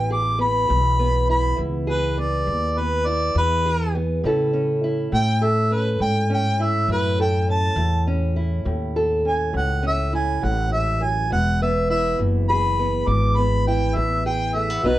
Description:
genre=acoustic country blues, solo or duo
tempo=68 BPM (dotted quarters)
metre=12/8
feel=straight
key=E major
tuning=A4 = 440 Hz
part: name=mellow harmonica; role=melody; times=0.0-15.0 s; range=B4 to D6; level=-22 LUFS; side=equal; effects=none
part: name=fingerpicked steel-string acoustic guitar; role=accompaniment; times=0.0-15.0 s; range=E2 to A4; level=-24 LUFS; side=right 1 dB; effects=none
part: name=upright bass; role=bass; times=0.0-15.0 s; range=E1 to C#3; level=-22 LUFS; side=equal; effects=none
room=light reverb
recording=worn, warbling old tape, cassette tape, warbly pitch drift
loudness=-19 LUFS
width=side -15 dB against mid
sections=0.0-15.0 A section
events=harmonica solo 0.0-15.0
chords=0.0 E; 4.2 A; 11.3 E

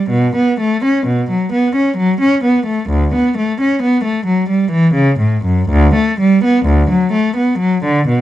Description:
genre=classical, baroque-style suite movement for unaccompanied cello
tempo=58-67 BPM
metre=3/4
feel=rubato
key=unclear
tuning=A4 = 439 Hz
part: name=rich cello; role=solo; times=0.0-8.2 s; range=D2 to C#4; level=-12 LUFS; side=equal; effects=none
room=light reverb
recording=dark, warm production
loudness=-12 LUFS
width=side -13 dB against mid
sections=0.0-8.2 A section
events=none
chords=none

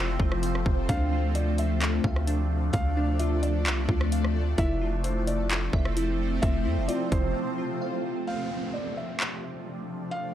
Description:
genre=hip hop, atmospheric cloud-rap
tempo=130 BPM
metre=4/4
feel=half-time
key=unclear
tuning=A4 = 440 Hz
part: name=shimmering ambient pad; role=sustained chords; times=0.0-10.3 s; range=C3 to D4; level=-31 LUFS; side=equal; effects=chorus, built-in reverb, phaser, sidechain pumping
part: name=glassy digital keys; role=arpeggios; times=0.0-8.3 s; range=D4 to F5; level=-34 LUFS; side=left 1 dB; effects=chorus, analog delay
part: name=long sustained 808-style bass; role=bass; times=0.0-7.3 s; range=F1 to F2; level=-27 LUFS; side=equal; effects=none
part: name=trap drum kit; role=drums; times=0.2-9.3 s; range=handclaps, hi-hat, kick drum, rim click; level=-28 LUFS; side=equal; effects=overdrive
part: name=felt-muted upright piano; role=melody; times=0.9-10.3 s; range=C5 to F5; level=-36 LUFS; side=equal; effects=analog delay
part: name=downlifter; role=sound effects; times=8.3-10.3 s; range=none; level=-41 LUFS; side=right 1 dB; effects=none
room=little or no reverb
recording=dry, gritty hardware recording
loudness=-24 LUFS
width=side -11 dB against mid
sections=0.0-8.3 A section; 8.3-10.3 B section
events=break 7.4-8.3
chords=0.0 Fmaj7; 0.9 Dm7; 4.6 Fmaj7; 8.3 Dm7

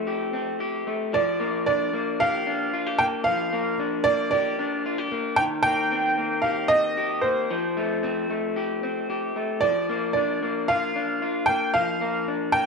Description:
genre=indie pop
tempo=113 BPM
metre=4/4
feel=straight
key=G minor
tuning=A4 = 435 Hz
part: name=electric guitar through a small old amp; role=arpeggios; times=0.0-12.7 s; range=Eb3 to G4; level=-26 LUFS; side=left 3 dB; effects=none
part: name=bright upright piano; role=melody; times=1.1-12.7 s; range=C5 to G5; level=-23 LUFS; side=right 2 dB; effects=slapback echo
room=moderate spring reverb, RT60 1.5 s, small room ambience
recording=dark, warm production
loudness=-22 LUFS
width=side -4 dB against mid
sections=0.0-12.7 A section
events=none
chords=0.0 Fadd9; 1.1 Gm7; 5.4 Cm7; 7.5 Fadd9; 9.6 Bb6/F

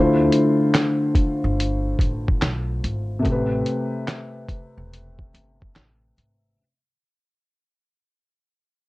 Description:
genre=lo-fi hip hop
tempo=72 BPM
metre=4/4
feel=swing 64% on 16ths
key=unclear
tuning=A4 = 440 Hz
part: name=felt-muted upright piano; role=accompaniment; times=0.0-6.6 s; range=C3 to C5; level=-20 LUFS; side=left 1 dB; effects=cassette tape, low-pass filter
part: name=upright bass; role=bass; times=0.0-6.5 s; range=E1 to D2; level=-26 LUFS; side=equal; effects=none
part: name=lo-fi sampler-style drum kit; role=drums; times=0.3-6.4 s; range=handclaps, hi-hat, kick drum, snare drum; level=-22 LUFS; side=equal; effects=none
room=moderate studio ambience, RT60 0.5 s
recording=cassette tape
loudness=-19 LUFS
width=side -20 dB against mid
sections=0.0-6.6 A section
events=fade-out 0.0-6.6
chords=0.0 Dm9; 3.2 Am9

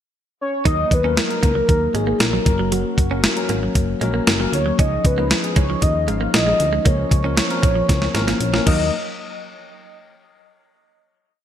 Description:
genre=1980s-style pop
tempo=116 BPM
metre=4/4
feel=straight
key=Eb minor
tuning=A4 = 440 Hz
part: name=warm velvety synth lead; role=melody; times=0.4-8.9 s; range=Gb4 to F5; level=-22 LUFS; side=equal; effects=chorus, ping-pong delay
part: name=bell-like tine electric piano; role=accompaniment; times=0.7-8.9 s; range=F3 to Db5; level=-24 LUFS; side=left 5 dB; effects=phaser
part: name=direct-recorded clean electric guitar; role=riff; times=0.7-8.8 s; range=F3 to Eb4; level=-28 LUFS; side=right 6 dB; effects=lush chorus
part: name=solid FM bass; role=bass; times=0.7-8.9 s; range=Gb1 to Eb2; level=-23 LUFS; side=equal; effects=none
part: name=clean 12-bit digital drum machine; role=drums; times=0.7-8.8 s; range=crash cymbal, hi-hat, kick drum, snare drum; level=-19 LUFS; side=equal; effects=gated reverb
room=light reverb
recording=bright 1980s-style digital production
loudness=-16 LUFS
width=side -10 dB against mid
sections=0.0-0.7 pickup bar; 0.7-8.9 verse; 8.9-11.0 final hit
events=drum fill 7.9-8.9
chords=0.0 N.C.; 0.7 Ebm; 2.5 Gb; 4.8 Dbadd9; 6.9 Bbm; 8.7 Ebm; 8.9 N.C.

